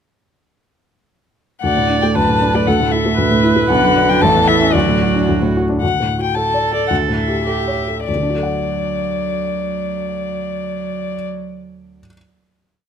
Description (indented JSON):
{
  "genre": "quick classical-period movement for piano quartet",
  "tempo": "96-118 BPM",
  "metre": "2/4",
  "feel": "rubato",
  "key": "D major",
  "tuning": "A4 = 440 Hz",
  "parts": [
    { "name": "dark violin", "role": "melody", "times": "1.6-11.3 s", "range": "D5 to A5", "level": "-19 LUFS", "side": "left 6 dB", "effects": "none" },
    { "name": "warm cello", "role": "second line", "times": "1.6-11.3 s", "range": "F#2 to A4", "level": "-22 LUFS", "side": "right 9 dB", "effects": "none" },
    { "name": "dark baby grand piano", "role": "accompaniment", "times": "1.6-12.2 s", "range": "A1 to F#5", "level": "-18 LUFS", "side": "left 1 dB", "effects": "none" },
    { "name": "warm viola", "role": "accompaniment", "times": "1.6-5.5 s", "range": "F#4 to D5", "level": "-20 LUFS", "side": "right 4 dB", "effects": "none" }
  ],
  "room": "moderate recital hall reverb, RT60 1.5 s",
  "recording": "close, detailed microphones",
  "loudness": "-14 LUFS",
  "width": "side -8 dB against mid",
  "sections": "1.6-5.8 A section; 5.8-8.1 coda; 8.1-10.5 final chord",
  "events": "slowing down 5.3-8.1",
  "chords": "1.6 D; 2.7 A5/D; 3.7 Bm; 4.2 A; 4.7 D; 6.9 A7/D; 8.1 D"
}